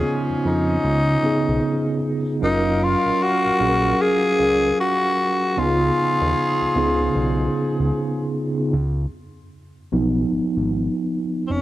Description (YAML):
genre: R&B, neo-soul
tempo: 76 BPM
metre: 4/4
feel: swing 62% on 16ths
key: unclear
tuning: A4 = 444 Hz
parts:
  - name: growling tenor saxophone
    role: melody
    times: 0.0-11.6 s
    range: B#3 to G#4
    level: -21 LUFS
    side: left 1 dB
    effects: cassette tape
  - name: mellow tine electric piano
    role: accompaniment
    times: 0.0-11.6 s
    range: C#3 to E#5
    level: -22 LUFS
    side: right 1 dB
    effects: medium stereo tremolo, cassette tape
  - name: mellow horn section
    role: stabs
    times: 0.0-8.3 s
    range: G#2 to E#5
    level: -30 LUFS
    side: right 1 dB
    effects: cassette tape
  - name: fat analog bass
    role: bass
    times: 0.0-11.6 s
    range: E#1 to E#2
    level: -23 LUFS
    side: equal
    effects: tube saturation
room: small room ambience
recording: home recording on cassette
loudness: -18 LUFS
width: side -15 dB against mid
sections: 0.0-8.7 A section; 8.7-11.6 B section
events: tine electric piano solo 8.7-11.6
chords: 0.0 C#9; 2.4 F#maj7; 5.6 C#9